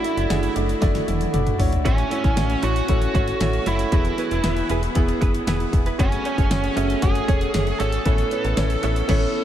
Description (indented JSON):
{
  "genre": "1980s-style pop",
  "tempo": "116 BPM",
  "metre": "4/4",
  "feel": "straight",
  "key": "A major",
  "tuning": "A4 = 440 Hz",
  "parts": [
    { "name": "biting lead guitar", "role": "melody", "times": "0.0-9.4 s", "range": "C#4 to A4", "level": "-26 LUFS", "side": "right 2 dB", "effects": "overdrive, analog delay" },
    { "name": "warm concert grand piano", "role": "accompaniment", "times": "0.0-9.4 s", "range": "A2 to E5", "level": "-25 LUFS", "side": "equal", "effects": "wide subtle chorus" },
    { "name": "pop drum kit", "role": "drums", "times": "0.0-9.3 s", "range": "crash cymbal, hi-hat, kick drum, snare drum, tambourine, toms", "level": "-23 LUFS", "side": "equal", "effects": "none" },
    { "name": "slap-like FM bass", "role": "bass", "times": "0.2-9.3 s", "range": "E1 to A1", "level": "-24 LUFS", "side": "equal", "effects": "none" },
    { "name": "direct-recorded clean electric guitar", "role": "riff", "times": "1.8-9.3 s", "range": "A3 to C#5", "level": "-30 LUFS", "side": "right 4 dB", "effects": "wide subtle chorus, analog delay" }
  ],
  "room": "moderate huge ambient reverb, RT60 6.9 s",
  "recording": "dreamy mix soaked in reverb",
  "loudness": "-18 LUFS",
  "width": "side -11 dB against mid",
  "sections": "0.0-9.4 A section",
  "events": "drum fill 0.8-1.9; band accent 9.1-9.4",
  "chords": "0.0 Dadd9/F#; 1.9 A6; 3.9 E; 6.0 F#madd9; 8.1 Aadd9"
}